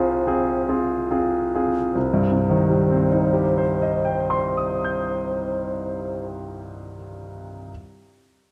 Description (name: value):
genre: classical, romantic duo for flute and grand piano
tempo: 44-52 BPM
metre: 3/4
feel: rubato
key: C minor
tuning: A4 = 442 Hz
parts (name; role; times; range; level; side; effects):
- mellow hollow concert flute; melody; 0.0-6.2 s; C5; -28 LUFS; equal; none
- bright grand piano; accompaniment; 0.0-7.7 s; C2 to G6; -24 LUFS; equal; none
room: moderate scoring stage reverb, RT60 1.9 s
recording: dark, warm production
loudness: -22 LUFS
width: mono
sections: 0.0-2.0 A section; 2.0-5.5 B section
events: slowing down 0.0-2.0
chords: 0.0 Fm/C; 2.0 Cm